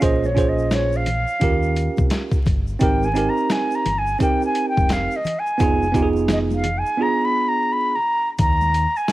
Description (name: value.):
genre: hip hop, jazz-hop.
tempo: 86 BPM.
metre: 4/4.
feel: swing 61% on 16ths.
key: unclear.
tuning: A4 = 442 Hz.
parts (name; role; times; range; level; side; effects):
mellow concert flute; melody; 0.0-9.1 s; Db5 to Cb6; -22 LUFS; equal; none.
tine electric piano; accompaniment; 0.0-8.0 s; Cb4 to C5; -22 LUFS; right 4 dB; slow stereo tremolo, cassette tape.
deep dub fingered electric bass; bass; 0.0-8.8 s; F1 to Eb2; -24 LUFS; equal; none.
boom bap sampler-style drum kit; drums; 0.0-9.1 s; hi-hat, kick drum, snare drum; -21 LUFS; equal; none.
egg shaker and congas; percussion; 0.0-9.1 s; none; -34 LUFS; left 4 dB; none.
room: digital ambience.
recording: home recording on cassette, vinyl crackle.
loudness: -17 LUFS.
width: side -16 dB against mid.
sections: 0.0-8.4 A section.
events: flute solo 0.0-8.4; silent gap 7.0-8.4.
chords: 0.0 Bbm9; 1.4 Eb7; 2.8 Abmaj7; 5.6 Fm7b5; 7.0 Bb7b9/Cb; 8.4 Eb5.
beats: | 0.02 0.72 1.42 2.11 | 2.81 3.51 4.21 4.90 | 5.60 6.30 7.00 7.70 | 8.39 9.09.